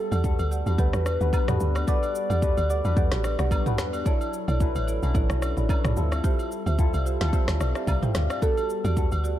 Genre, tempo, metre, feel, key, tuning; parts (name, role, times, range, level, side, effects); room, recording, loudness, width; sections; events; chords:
amapiano; 110 BPM; 4/4; swing 55% on 16ths; A4 = 440 Hz
soft struck synth lead; melody; 0.0-3.7, 8.4-9.2 s; A4 to D5; -30 LUFS; equal; chorus, tape echo
tine electric piano; accompaniment; 0.0-9.4 s; F#3 to A5; -32 LUFS; left 4 dB; phaser
marimba with medium mallets; stabs; 0.0-9.4 s; E4 to F#5; -33 LUFS; right 7 dB; tape echo
woody log drum bass; bass; 0.1-9.4 s; A1 to E2; -25 LUFS; equal
deep house drum kit; drums; 0.1-9.4 s; kick drum, rim click, shaker, snare drum, toms; -26 LUFS; equal
agogo bells and woodblock; percussion; 0.1-9.2 s; -38 LUFS; right 2 dB
digital ambience; dark, warm production; -22 LUFS; side -12 dB against mid
0.0-9.4 A section
0.0 Em11; 4.1 Bm11; 6.0 Dm11; 8.4 Em11